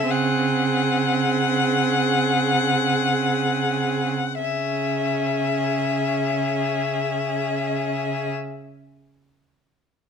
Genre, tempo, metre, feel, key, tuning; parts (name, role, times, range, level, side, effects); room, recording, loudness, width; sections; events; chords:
classical, slow romantic movement for string quartet; free time; C# minor; A4 = 440 Hz
warm violin; melody; 0.0-8.3 s; E5 to F#5; -23 LUFS; left 6 dB
rich violin; second line; 0.0-8.3 s; G#4; -28 LUFS; left 2 dB
warm viola; accompaniment; 0.0-8.3 s; B#3 to C#4; -26 LUFS; right 5 dB
rich cello; bass; 0.0-8.3 s; C#3; -28 LUFS; right 5 dB
light reverb; minimal, uncompressed stereo recording; -20 LUFS; side -6 dB against mid
0.0-4.4 A section; 4.4-8.9 B section
slowing down 0.0-4.4
0.1 G#7/C#; 4.4 C#m